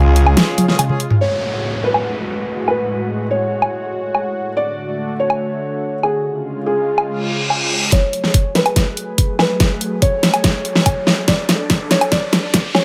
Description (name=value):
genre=heavy wobble dubstep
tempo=143 BPM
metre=4/4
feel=half-time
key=F# harmonic minor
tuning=A4 = 439 Hz
part: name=lush unison pad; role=sustained chords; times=0.0-12.8 s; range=A2 to A4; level=-27 LUFS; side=equal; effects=chorus, sidechain pumping
part: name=clear brass ensemble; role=stabs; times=0.0-1.0 s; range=C#4 to G#4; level=-25 LUFS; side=equal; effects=delay
part: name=dubstep drum kit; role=drums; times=0.2-12.8 s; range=hi-hat, snare drum, toms, woodblock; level=-18 LUFS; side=equal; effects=overdrive, low-pass filter on hats, low-pass filter on perc, low-pass filter on snare, low-pass filter on toms, low-pass filter on room
part: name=felt-muted upright piano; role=melody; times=1.2-12.8 s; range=G#4 to D5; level=-24 LUFS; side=equal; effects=low-pass filter, delay
part: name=downlifter, reverse cymbal and riser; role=sound effects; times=1.2-12.8 s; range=none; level=-28 LUFS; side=equal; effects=none
part: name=electronic kick drum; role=drums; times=7.9-12.6 s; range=none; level=-18 LUFS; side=equal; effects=overdrive
room=light reverb, digital ambience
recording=high-pass filter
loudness=-17 LUFS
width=mono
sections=0.0-1.2 A section; 1.2-7.9 B section; 7.9-12.8 C section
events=drop 0.0-1.2; break 0.4-1.2; drum fill 0.6-1.2, 7.9-12.8; filter sweep on drum 1.2-7.9; reverse cymbal 7.2-7.9; build-up 7.9-12.8; filter sweep on analog synth pad 7.9-12.8; filter sweep on felt piano 7.9-12.8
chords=0.0 C#; 1.2 F#madd9; 4.6 D; 6.2 C#; 7.9 F#madd9; 11.3 D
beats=0.37 0.79 | 1.21 1.63 2.05 2.47 | 2.89 3.31 3.73 4.15 | 4.57 4.99 5.41 5.82 | 6.24 6.66 7.08 7.50 | 7.92 8.34 8.76 9.18 | 9.60 10.02 10.44 10.86 | 11.28 11.70 12.12 12.54